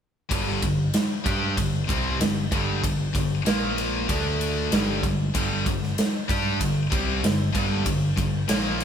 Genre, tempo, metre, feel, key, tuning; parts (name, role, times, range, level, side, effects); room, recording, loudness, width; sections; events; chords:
hard rock; 95 BPM; 4/4; straight; A4 = 439 Hz
overdriven semi-hollow guitar; riff; 0.3-8.8 s; G2 to G4; -29 LUFS; right 5 dB
scooped high-gain guitar; riff; 0.3-8.8 s; G2 to G4; -27 LUFS; left 5 dB; distortion
overdriven picked electric bass; bass; 0.3-8.8 s; G1 to G2; -30 LUFS; equal
big rock drum kit; drums; 0.3-8.8 s; kick drum, ride cymbal, snare drum; -26 LUFS; right 1 dB
moderate stone room reverb, RT60 1.1 s; band playing live in one room; -22 LUFS; side -8 dB against mid
0.3-8.8 A section
0.3 G5; 3.5 Bb5; 4.1 D5; 4.7 G5